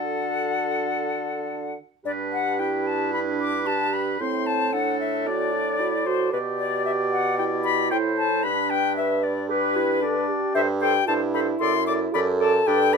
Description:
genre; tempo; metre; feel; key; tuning
quick classical-period movement for wind quintet; 113 BPM; 4/4; straight; G major; A4 = 439 Hz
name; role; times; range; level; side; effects
silver concert flute; melody; 0.0-13.0 s; B4 to D6; -25 LUFS; left 8 dB; none
warm oboe; second line; 0.0-13.0 s; A4 to D5; -30 LUFS; left 1 dB; none
mellow French horn; accompaniment; 0.0-13.0 s; D4 to B4; -28 LUFS; right 1 dB; none
mellow clarinet; accompaniment; 0.0-13.0 s; C4 to B4; -30 LUFS; right 6 dB; none
warm bassoon; bass; 0.0-13.0 s; F#2 to D3; -28 LUFS; right 5 dB; none
room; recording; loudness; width
moderate studio reverb, RT60 0.6 s; minimal, uncompressed stereo recording; -21 LUFS; side -5 dB against mid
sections
0.0-2.1 A section; 2.1-13.0 B section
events
none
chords
0.0 D; 2.1 G; 4.2 D7/A; 6.3 G/B; 8.4 G; 10.6 Am7/G; 11.6 D/F#

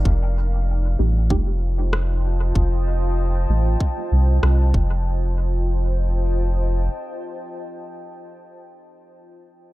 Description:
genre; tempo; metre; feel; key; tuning
ambient dub; 96 BPM; 4/4; straight; F mixolydian; A4 = 440 Hz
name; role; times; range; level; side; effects
deep dark ambient pad; sustained chords; 0.0-8.3 s; Eb4 to A5; -30 LUFS; equal; chorus, built-in reverb
soft dub sub bass; bass; 0.0-6.9 s; F1 to C2; -19 LUFS; equal; none
electronic kick drum; drums; 0.1-4.9 s; none; -20 LUFS; equal; none
filtered dub chord stab; stabs; 1.0-8.1 s; A3 to G4; -31 LUFS; right 2 dB; phaser, lush chorus, dub echo
electronic rim click; drums; 1.9-4.6 s; none; -30 LUFS; left 1 dB; dub echo
room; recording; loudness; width
digital ambience; dark, warm production; -18 LUFS; side -17 dB against mid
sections
0.1-5.1 A section; 5.1-7.6 B section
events
filter sweep on synth stab 0.1-5.1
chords
0.1 F9

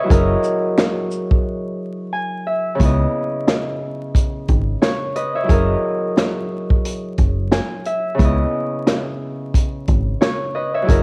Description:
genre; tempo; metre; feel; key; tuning
hip hop, boom-bap hip-hop; 89 BPM; 4/4; swing 59% on 16ths; C# dorian; A4 = 438 Hz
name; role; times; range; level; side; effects
Celtic harp; accompaniment; 0.0-11.0 s; C#3 to G#5; -24 LUFS; equal; cassette tape, high-pass filter, low-pass filter
deep dub fingered electric bass; bass; 0.1-11.0 s; F#1 to C#2; -21 LUFS; equal; none
vintage drum kit; drums; 0.1-11.0 s; hi-hat, kick drum, shaker, snare drum; -19 LUFS; equal; cassette tape
finger snaps; percussion; 0.8-1.0 s; none; -40 LUFS; equal; none
room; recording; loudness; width
studio reverb; home recording on cassette, vinyl crackle; -19 LUFS; mono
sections
0.0-2.8 A section; 2.8-11.0 B section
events
break 1.4-2.8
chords
0.1 F#13; 2.8 C#m9; 5.5 F#13; 8.2 C#m9

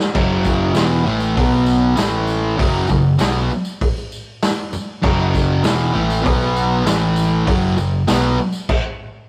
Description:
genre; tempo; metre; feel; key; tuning
garage rock duo or trio; 98 BPM; 4/4; straight; unclear; A4 = 441 Hz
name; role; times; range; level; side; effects
vintage drum kit; drums; 0.0-8.8 s; crash cymbal, hi-hat, kick drum, snare drum; -23 LUFS; equal; none
fuzz guitar; riff; 0.1-8.4 s; E2 to B3; -19 LUFS; equal; distortion
picked electric bass; bass; 0.1-8.4 s; E1 to B1; -24 LUFS; equal; overdrive
tambourine; percussion; 0.4-8.7 s; none; -38 LUFS; equal; none
room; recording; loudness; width
light reverb; rough rehearsal-room recording, warm saturation; -17 LUFS; mono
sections
0.0-9.3 A section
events
stop 8.7-9.3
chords
0.0 F#5; 1.4 B5; 2.0 A5; 2.6 F#5; 6.3 B5; 6.9 A5; 7.5 F#5

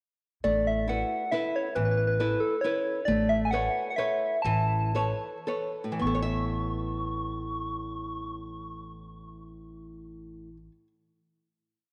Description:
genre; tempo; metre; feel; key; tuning
italian folk, Italian serenade; 104-137 BPM; 3/4; swing 54% on 8ths; A major; A4 = 438 Hz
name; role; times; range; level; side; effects
soft struck synth lead; melody; 0.4-10.2 s; A4 to C#6; -32 LUFS; equal; chorus
nylon-string guitar; accompaniment; 0.4-10.9 s; A2 to E5; -34 LUFS; equal; none
upright bass; bass; 0.4-10.7 s; A1; -36 LUFS; equal; none
room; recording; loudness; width
wet echo chamber reverb, RT60 2.1 s; none; -29 LUFS; mono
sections
0.4-6.0 A section; 6.0-9.4 final chord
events
slowing down 3.1-6.0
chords
0.4 Asus2; 3.1 Aadd9

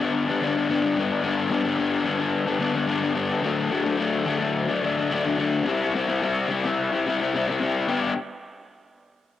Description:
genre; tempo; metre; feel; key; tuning
rock; 108 BPM; 4/4; straight; G major; A4 = 440 Hz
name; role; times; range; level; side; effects
crunchy overdriven guitar; solo; 0.0-8.1 s; G2 to G4; -22 LUFS; left 4 dB; cassette tape
room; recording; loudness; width
moderate spring reverb, RT60 2.4 s; home recording on cassette; -22 LUFS; side -11 dB against mid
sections
0.0-7.9 A section; 7.9-9.4 B section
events
none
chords
0.0 G; 3.5 D; 5.7 C; 7.9 G

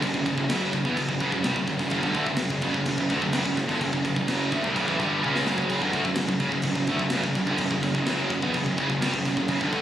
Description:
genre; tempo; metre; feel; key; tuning
heavy metal; 127 BPM; 4/4; straight; F# minor; A4 = 441 Hz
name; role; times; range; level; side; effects
heavy high-gain guitar; riff; 0.0-9.8 s; F#2 to C#4; -27 LUFS; right 6 dB; distortion
scooped high-gain guitar; riff; 0.0-9.8 s; F#2 to C#4; -29 LUFS; left 7 dB; distortion
fuzz picked electric bass; bass; 0.0-9.8 s; F#1 to E2; -29 LUFS; equal; overdrive
tight metal drum kit; drums; 0.0-9.8 s; crash cymbal, kick drum, snare drum, toms; -31 LUFS; equal; none
room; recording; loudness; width
light reverb; recorded on a phone in the room, studio reverb, compression; -23 LUFS; side -11 dB against mid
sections
0.0-9.8 A section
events
drum fill 5.2-5.7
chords
0.0 F#m

